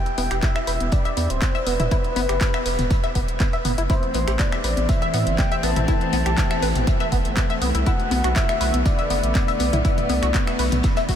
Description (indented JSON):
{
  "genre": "progressive house",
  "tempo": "121 BPM",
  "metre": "4/4",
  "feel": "straight",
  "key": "E minor",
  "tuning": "A4 = 440 Hz",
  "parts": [
    { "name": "soft octave-layered synth lead", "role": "melody", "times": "0.0-11.2 s", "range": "B4 to A5", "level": "-27 LUFS", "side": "left 2 dB", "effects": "chorus, sidechain pumping, ping-pong delay" },
    { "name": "house drum kit", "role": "drums", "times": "0.1-11.2 s", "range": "finger snaps, handclaps, hi-hat", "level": "-29 LUFS", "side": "left 1 dB", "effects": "none" },
    { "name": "tight sequenced synth", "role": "arpeggios", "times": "0.2-11.1 s", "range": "B3 to E5", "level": "-27 LUFS", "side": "equal", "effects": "chorus, phaser, sidechain pumping, ping-pong delay" },
    { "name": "round analog bass", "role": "bass", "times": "0.2-11.2 s", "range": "D1 to A2", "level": "-24 LUFS", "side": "equal", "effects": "tube saturation, sidechain pumping" },
    { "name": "warm soul drum kit", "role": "drums", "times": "0.2-11.2 s", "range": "hi-hat, snare drum", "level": "-41 LUFS", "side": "right 2 dB", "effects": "none" },
    { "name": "electronic congas and toms", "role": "percussion", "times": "0.2-10.8 s", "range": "none", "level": "-32 LUFS", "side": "left 3 dB", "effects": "none" },
    { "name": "electronic kick drum", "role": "drums", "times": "0.4-11.2 s", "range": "none", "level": "-21 LUFS", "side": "equal", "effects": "none" },
    { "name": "dark chamber string section", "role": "sustained chords", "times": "3.9-11.2 s", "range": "D3 to C4", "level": "-27 LUFS", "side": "equal", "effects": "sidechain pumping" }
  ],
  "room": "moderate huge ambient reverb, RT60 7.5 s",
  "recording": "dreamy mix soaked in reverb",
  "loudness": "-18 LUFS",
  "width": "side -9 dB against mid",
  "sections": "0.0-11.2 A section",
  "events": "none",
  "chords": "0.0 Em; 3.9 Am; 7.9 Bm7"
}